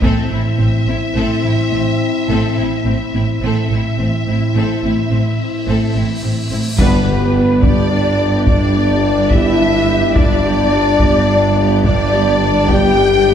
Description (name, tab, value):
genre	cinematic, epic orchestral film score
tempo	71 BPM (dotted quarters)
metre	12/8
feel	straight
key	G major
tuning	A4 = 441 Hz
part	warm symphonic violin section	melody	0.0-13.3 s	B4 to G5	-24 LUFS	left 3 dB	none
part	rich studio violin section	second line	0.0-13.3 s	C4 to G5	-25 LUFS	right 1 dB	none
part	warm symphonic viola section	accompaniment	0.0-13.3 s	G3 to G4	-24 LUFS	right 2 dB	none
part	mellow French horn section	sustained chords	0.0-13.3 s	B3 to G4	-17 LUFS	left 3 dB	none
part	rich symphonic cello section	bass	0.0-13.3 s	G2 to A2	-20 LUFS	right 1 dB	none
part	rich symphonic double bass section	bass	0.0-13.3 s	G1 to A1	-20 LUFS	right 2 dB	none
part	taiko ensemble	drums	0.0-1.1, 6.8-13.2 s	none	-18 LUFS	equal	none
part	cymbal swell and impact	sound effects	5.6-10.2 s	none	-27 LUFS	left 1 dB	none
part	flute section	second line	6.8-13.3 s	B4 to G5	-23 LUFS	right 1 dB	none
part	clear tuba	bass	6.8-13.3 s	G1	-23 LUFS	right 2 dB	none
part	timpani	percussion	6.8-7.6 s	G2	-22 LUFS	left 4 dB	none
room	wet scoring stage reverb, RT60 1.8 s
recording	heard from further back in the room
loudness	-12 LUFS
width	side -9 dB against mid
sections	0.0-6.8 A section; 6.8-13.3 B section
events	build-up 0.0-6.8; cymbal swell 5.6-6.8; band accent 6.8-7.4; impact 6.8-10.2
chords	0.0 Am; 6.8 G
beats	| 0.03 0.88 1.72 2.57 | 3.42 4.26 5.11 5.96 | 6.80 7.64 8.49 9.33 | 10.18 11.02 11.86 12.70